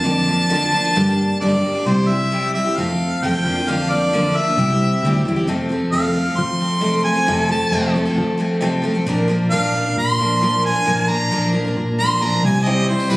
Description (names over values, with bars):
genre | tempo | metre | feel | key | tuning
folk rock and heartland rock | 133 BPM | 4/4 | straight | F major | A4 = 440 Hz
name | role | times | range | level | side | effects
bright harmonica | melody | 0.0-13.2 s | B4 to C6 | -20 LUFS | equal | tape echo
picked steel-string acoustic guitar | accompaniment | 0.0-13.2 s | F2 to Bb4 | -20 LUFS | equal | none
picked electric bass | bass | 0.0-13.2 s | Bb1 to F3 | -21 LUFS | equal | none
bright upright piano | accompaniment | 12.7-13.2 s | E4 to C5 | -29 LUFS | right 1 dB | none
tonewheel organ | sustained chords | 12.7-13.2 s | C4 to C5 | -31 LUFS | right 1 dB | none
tambourine | percussion | 13.0-13.2 s | none | -29 LUFS | right 2 dB | none
room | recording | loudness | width
light reverb | recorded on a phone in the room, studio reverb, compression | -16 LUFS | side -20 dB against mid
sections
0.0-5.5 A section; 5.5-13.2 B section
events
harmonica solo 5.5-13.2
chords
0.0 Bb/F; 1.0 Gm; 1.9 C; 2.8 F; 3.4 Bb/F; 4.6 C; 5.5 F; 9.1 Bb; 12.4 C